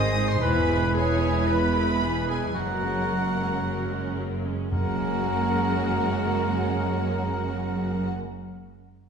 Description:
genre	cinematic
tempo	113 BPM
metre	4/4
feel	straight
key	F# mixolydian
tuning	A4 = 440 Hz
part	rich symphonic violin section	melody	0.0-8.1 s	F#5 to D#6	-34 LUFS	left 2 dB	none
part	clear clarinet	second line	0.0-8.1 s	F#4 to D#5	-37 LUFS	left 2 dB	none
part	rich symphonic violin section	second line	0.0-8.1 s	C#4 to C#5	-35 LUFS	left 1 dB	none
part	warm oboe	second line	0.0-8.1 s	F#4 to D#5	-32 LUFS	right 1 dB	none
part	rich symphonic viola section	accompaniment	0.0-8.1 s	D#3 to E4	-32 LUFS	right 1 dB	none
part	dark French horn section	sustained chords	0.0-8.1 s	G#3 to E4	-33 LUFS	left 2 dB	none
part	dark trumpet section	stabs	0.0-8.1 s	A#4 to B#4	-32 LUFS	right 1 dB	none
part	rich studio double bass section	bass	0.0-8.1 s	E1 to G#1	-30 LUFS	right 3 dB	none
part	rich symphonic cello section	bass	0.0-8.1 s	E2 to G#2	-31 LUFS	right 2 dB	none
part	timpani	percussion	4.7-8.1 s	F#2	-32 LUFS	equal	none
room	wet scoring stage reverb, RT60 1.7 s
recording	heard from further back in the room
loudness	-23 LUFS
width	side -6 dB against mid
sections	0.0-4.7 A section; 4.7-9.0 B section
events	none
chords	0.4 E; 2.5 F#add9

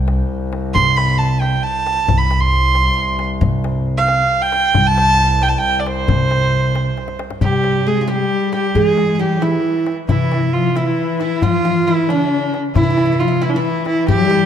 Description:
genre	Persian modal ensemble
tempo	90 BPM (dotted quarters)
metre	6/8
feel	straight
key	unclear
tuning	A4 = 440 Hz
part	upright bass	bass	0.0-14.5 s	C2 to E3	-19 LUFS	equal	none
part	rich double bass	drone	0.0-7.5 s	C2	-25 LUFS	left 2 dB	none
part	tombak	percussion	0.1-14.4 s	none	-22 LUFS	left 4 dB	none
part	bright kamancheh	melody	0.7-14.5 s	Db4+43c to C6	-17 LUFS	right 2 dB	none
part	oud	second line	7.4-14.5 s	Db4+45c to Ab4	-22 LUFS	right 4 dB	none
part	rich cello	second line	7.4-14.5 s	Db3+37c to Ab3	-20 LUFS	left 6 dB	none
room	moderate scoring stage reverb, RT60 1.9 s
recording	none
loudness	-14 LUFS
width	side -9 dB against mid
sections	0.0-7.4 A section; 7.4-14.5 B section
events	drum fill 7.0-7.4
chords	none

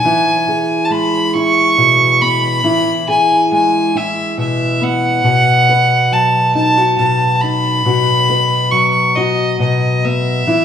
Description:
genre	acoustic folk duo or small band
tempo	46 BPM (dotted quarters)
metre	6/8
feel	straight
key	B mixolydian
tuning	A4 = 441 Hz
part	warm fiddle	melody	0.0-10.6 s	D#5 to C#6	-13 LUFS	right 1 dB	none
part	nylon-string guitar	accompaniment	0.0-10.6 s	B2 to B4	-16 LUFS	left 1 dB	none
room	wet recital hall reverb, RT60 1.6 s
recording	recorded in a church or concert hall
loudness	-11 LUFS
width	side -8 dB against mid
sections	0.0-10.6 A section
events	none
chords	0.1 E; 5.3 B5

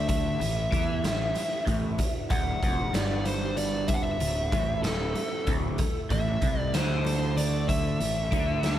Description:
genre	psychedelic rock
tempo	63 BPM (dotted quarters)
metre	6/8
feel	straight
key	D mixolydian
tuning	A4 = 440 Hz
part	fuzz lead guitar	melody	0.0-8.8 s	A4 to F#5	-31 LUFS	equal	distortion, analog delay
part	tonewheel organ	sustained chords	0.0-8.8 s	E3 to A4	-40 LUFS	right 6 dB	slow rotary speaker
part	crunchy overdriven guitar	riff	0.0-8.8 s	D2 to E3	-32 LUFS	equal	flanger
part	fuzz fingered electric bass	bass	0.0-8.8 s	D1 to E2	-30 LUFS	equal	overdrive
part	raw garage drum kit	drums	0.1-8.8 s	hi-hat, kick drum, snare drum	-30 LUFS	equal	none
part	congas	percussion	0.1-8.8 s	none	-39 LUFS	left 2 dB	none
room	light reverb, small room ambience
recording	echo-heavy mix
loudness	-25 LUFS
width	side -12 dB against mid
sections	0.0-8.8 A section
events	none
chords	0.0 A5; 2.0 Dadd9; 5.8 A5

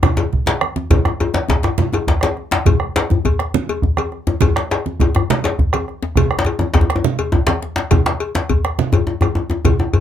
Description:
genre	west african traditional, West African drum ensemble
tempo	137 BPM (dotted quarters)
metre	12/8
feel	straight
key	none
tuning	none
part	bombo	percussion	0.0-9.8 s	none	-19 LUFS	right 2 dB	none
part	congas	percussion	0.0-10.0 s	none	-22 LUFS	right 7 dB	none
part	djembe	percussion	0.0-10.0 s	none	-22 LUFS	left 3 dB	none
part	djembe	percussion	0.0-10.0 s	none	-17 LUFS	left 2 dB	none
part	cowbell	percussion	0.2-10.0 s	none	-24 LUFS	left 6 dB	none
room	moderate small room ambience, RT60 0.5 s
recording	none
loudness	-15 LUFS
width	side -10 dB against mid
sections	0.9-10.0 A section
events	drum fill 0.0-0.9, 7.2-7.9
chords	none

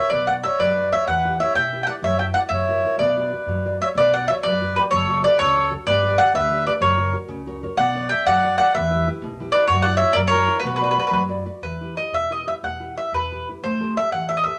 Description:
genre	italian folk, Italian serenade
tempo	124 BPM (dotted quarters)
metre	6/8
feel	rubato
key	B harmonic minor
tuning	A4 = 441 Hz
part	mandolin	melody	0.0-14.6 s	B4 to G5	-21 LUFS	equal	none
part	accordion	second line	0.0-11.2 s	F#4 to E5	-28 LUFS	equal	none
part	nylon-string guitar	accompaniment	0.0-14.6 s	B2 to D5	-31 LUFS	equal	none
part	upright bass	bass	0.1-14.4 s	F#1 to F#2	-32 LUFS	equal	none
room	wet studio reverb, RT60 0.5 s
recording	lossy compression artefacts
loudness	-20 LUFS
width	mono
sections	0.0-4.0 A section; 4.0-11.6 A section; 11.6-14.6 B section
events	none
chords	0.1 Bmadd9; 1.1 Em; 2.0 F#7sus4; 2.5 F#7; 3.0 Bm; 4.9 F#m; 5.9 G; 6.8 F#; 7.8 Bmadd9; 8.7 Em; 9.7 F#7sus4; 10.2 F#7; 10.6 Bm; 11.6 Em; 13.6 Am7

